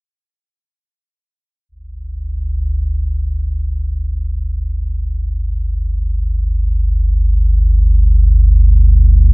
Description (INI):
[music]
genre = ambient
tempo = free time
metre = none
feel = none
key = unclear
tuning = A4 = 441 Hz
[part]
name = deep rumbling drone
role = solo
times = 1.7-9.3 s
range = G1 to D2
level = -13 LUFS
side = equal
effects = built-in reverb
[sound]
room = little or no reverb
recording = dark, warm production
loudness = -13 LUFS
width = side -29 dB against mid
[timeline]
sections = 1.7-9.3 A section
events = none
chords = 1.7 G5